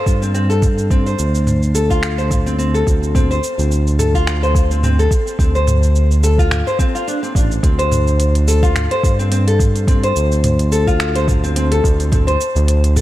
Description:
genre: organic downtempo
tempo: 107 BPM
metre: 4/4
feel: swing 55% on 16ths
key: D minor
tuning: A4 = 440 Hz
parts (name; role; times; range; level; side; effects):
- nylon-string guitar; arpeggios; 0.0-13.0 s; C4 to C5; -19 LUFS; left 2 dB; digital delay, shimmer reverb
- smooth synth bass; bass; 0.1-13.0 s; A1 to G2; -15 LUFS; equal; sidechain pumping
- electronic kick drum; drums; 0.1-12.2 s; none; -16 LUFS; equal; none
- organic electronic drum kit; drums; 0.1-13.0 s; finger snaps, hi-hat, shaker, toms; -23 LUFS; right 1 dB; none
room: light reverb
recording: none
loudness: -13 LUFS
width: side -15 dB against mid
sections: 0.0-13.0 A section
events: none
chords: 0.0 D7(no3)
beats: 0.35 | 0.91 1.47 2.03 2.59 | 3.15 3.71 4.27 4.83 | 5.39 5.95 6.51 7.08 | 7.64 8.20 8.76 9.32 | 9.88 10.44 11.00 11.56 | 12.12 12.68

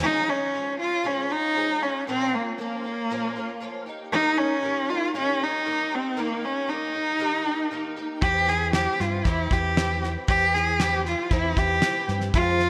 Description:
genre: indie folk with a building arrangement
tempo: 117 BPM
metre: 4/4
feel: straight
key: unclear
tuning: A4 = 440 Hz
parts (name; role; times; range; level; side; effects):
- warm cello; melody; 0.0-12.7 s; Bb3 to Ab4; -26 LUFS; equal; digital delay
- picked twelve-string acoustic guitar; accompaniment; 0.0-12.7 s; F2 to G4; -35 LUFS; equal; ensemble chorus
- hollow-body short-scale fingered electric bass; bass; 8.2-12.7 s; E2 to G2; -30 LUFS; equal; none
- cloth-damped thuddy drum kit; drums; 8.2-12.7 s; kick drum, snare drum; -29 LUFS; equal; gated reverb
room: moderate lush hall reverb, RT60 2.4 s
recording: bright 1980s-style digital production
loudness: -25 LUFS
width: mono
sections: 0.0-12.7 A section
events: none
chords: 0.0 Db; 2.1 Bbm; 3.9 Eb; 8.2 C/E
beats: | 0.02 0.54 1.05 1.56 | 2.07 2.58 3.09 3.60 | 4.12 4.63 5.14 5.65 | 6.17 6.68 7.20 7.71 | 8.22 8.74 9.25 9.77 | 10.28 10.79 11.31 11.82 | 12.34

